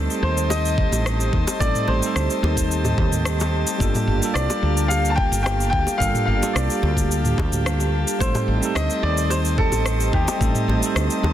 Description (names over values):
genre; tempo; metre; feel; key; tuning
sunset chillout; 109 BPM; 4/4; straight; unclear; A4 = 443 Hz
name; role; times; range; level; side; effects
clear baby grand piano; melody; 0.0-11.3 s; G4 to A5; -26 LUFS; equal; tape echo
bell-like tine electric piano; accompaniment; 0.0-11.3 s; G3 to A4; -27 LUFS; moving between left 4 dB and right 5 dB; auto-pan, low-pass filter, digital delay
airy breathy pad; sustained chords; 0.0-11.3 s; Bb3 to A5; -27 LUFS; right 1 dB; chorus, vintage 12-bit sampler grit
woody fretless electric bass; bass; 0.0-11.3 s; G1 to Eb2; -22 LUFS; equal; none
smooth R&B drum kit; drums; 0.1-11.2 s; rim click, shaker, toms; -27 LUFS; equal; soft clipping on snare
bongos; percussion; 0.5-11.3 s; none; -32 LUFS; left 1 dB; none
electronic kick drum; drums; 0.8-10.5 s; none; -23 LUFS; equal; none
room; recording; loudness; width
light reverb; dense, heavily limited modern master, faint mains hum; -18 LUFS; side -11 dB against mid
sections
0.0-11.3 A section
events
none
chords
0.0 Am7b5; 3.8 Gm9; 8.2 Am7b5